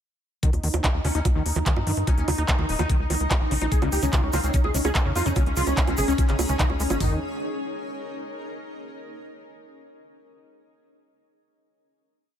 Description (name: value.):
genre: psychedelic trance.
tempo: 146 BPM.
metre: 4/4.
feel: straight.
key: unclear.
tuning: A4 = 440 Hz.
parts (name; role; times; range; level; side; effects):
bubbling stepped-filter texture; sustained chords; 0.4-7.0 s; Eb4; -33 LUFS; right 1 dB; chorus, built-in reverb, sidechain pumping.
overdriven acid bass; riff; 0.4-7.2 s; C3 to Eb4; -32 LUFS; moving between left 6 dB and right 3 dB; distortion, auto-pan, sidechain pumping, ping-pong delay.
big-room dance drum kit; drums; 0.4-7.0 s; bongos, handclaps, hi-hat; -28 LUFS; right 2 dB; overdrive.
drum and bass drum kit; drums; 0.4-7.1 s; hi-hat, kick drum, toms; -22 LUFS; equal; none.
granular cloud pad; texture; 2.0-8.6 s; Db4 to Eb5; -35 LUFS; equal; built-in reverb, sidechain pumping.
tight sequencer bass; bass; 0.5-7.2 s; Eb1 to G2; -26 LUFS; equal; none.
metallic wobble bass; second line; 1.0-5.9 s; C4 to Eb4; -40 LUFS; left 4 dB; distortion, lush chorus, sidechain pumping, high-pass filter, ping-pong delay.
wide unison lead; melody; 3.7-7.2 s; Db4 to Ab4; -28 LUFS; equal; phaser, sidechain pumping, ping-pong delay.
egg shaker; percussion; 3.7-7.0 s; none; -36 LUFS; right 4 dB; none.
room: little or no reverb.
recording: none.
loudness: -21 LUFS.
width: side -10 dB against mid.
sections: 0.4-7.0 groove; 7.0-8.6 final chord.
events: fade-in on ambient pad 0.4-7.0.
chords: 0.4 Eb5; 3.7 Db5; 7.0 Eb5.